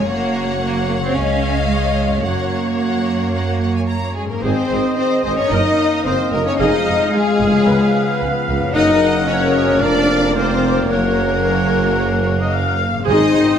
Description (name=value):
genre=cinematic, heroic adventure film score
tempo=111 BPM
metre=4/4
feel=straight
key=unclear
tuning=A4 = 439 Hz
part: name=rich symphonic violin section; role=melody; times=0.0-13.6 s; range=Ab4 to Bb5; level=-26 LUFS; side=left 3 dB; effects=none
part: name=rich chamber violin section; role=second line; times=0.0-13.6 s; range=Ab4 to Eb5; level=-27 LUFS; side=left 4 dB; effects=none
part: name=rich symphonic viola section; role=accompaniment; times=0.0-13.6 s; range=Ab4 to Gb5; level=-24 LUFS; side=right 1 dB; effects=none
part: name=mellow French horn section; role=sustained chords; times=0.0-13.6 s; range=Ab3 to F5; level=-20 LUFS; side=left 4 dB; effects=none
part: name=concert harp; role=arpeggios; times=0.0-13.6 s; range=F2 to Db5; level=-27 LUFS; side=left 9 dB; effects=none
part: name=rich symphonic cello section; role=bass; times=0.0-13.6 s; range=Ab3 to Eb4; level=-23 LUFS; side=right 3 dB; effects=none
part: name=rich symphonic double bass section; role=bass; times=0.0-13.4 s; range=F1 to Gb2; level=-23 LUFS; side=right 3 dB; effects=none
part: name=flute section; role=second line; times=4.2-13.6 s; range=Ab4 to Eb5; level=-27 LUFS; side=left 3 dB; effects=none
part: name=clear clarinet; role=second line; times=4.4-13.6 s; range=Ab4 to Db5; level=-30 LUFS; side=left 2 dB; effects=none
part: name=clear oboe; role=second line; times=4.4-13.6 s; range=Eb5 to Gb5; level=-25 LUFS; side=equal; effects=none
part: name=warm trombone section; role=sustained chords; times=4.4-13.6 s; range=Eb3 to Eb4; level=-26 LUFS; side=right 5 dB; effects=none
part: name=warm tuba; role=bass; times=4.4-13.5 s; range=F1 to Db2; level=-25 LUFS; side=right 4 dB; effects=none
part: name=timpani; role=percussion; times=13.1-13.6 s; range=Ab2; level=-23 LUFS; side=equal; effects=none
room=moderate scoring stage reverb, RT60 1.6 s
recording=none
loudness=-14 LUFS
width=side -8 dB against mid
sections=0.0-4.4 A section; 4.4-13.6 A section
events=none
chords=0.1 Gb; 1.2 Dbadd9; 2.2 Gb; 4.4 Ab; 5.5 Ebm/Gb; 6.6 Fm7; 7.7 Db7; 8.8 Gb; 9.8 Bb/F; 10.9 Gb; 13.1 Ab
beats=| 0.09 0.62 1.16 1.70 | 2.24 2.79 3.34 3.89 | 4.43 4.98 5.52 6.06 | 6.60 7.14 7.68 8.22 | 8.75 9.29 9.83 10.37 | 10.91 11.45 12.00 12.54 | 13.08